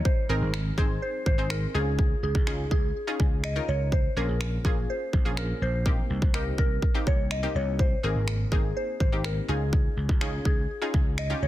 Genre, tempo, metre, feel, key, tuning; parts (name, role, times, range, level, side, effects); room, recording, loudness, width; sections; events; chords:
dance-pop; 124 BPM; 4/4; straight; Ab major; A4 = 442 Hz
soft synth bell; melody; 0.1-11.5 s; Ab4 to Eb5; -32 LUFS; equal; chorus, phaser, ping-pong delay
pop drum kit; drums; 0.1-11.3 s; finger snaps, kick drum; -26 LUFS; equal; soft clipping on snare
analog pluck; accompaniment; 0.3-11.5 s; Bb3 to C5; -34 LUFS; equal; chorus
vintage slap bass; bass; 0.3-11.5 s; Ab1 to Db2; -29 LUFS; equal; sidechain pumping
little or no reverb; dense, heavily limited modern master; -24 LUFS; side -14 dB against mid
0.1-11.5 A section
0.1 Abadd9; 1.7 Dbadd9; 3.9 Bbm7; 5.9 Cm7; 7.8 Abadd9; 9.5 Dbadd9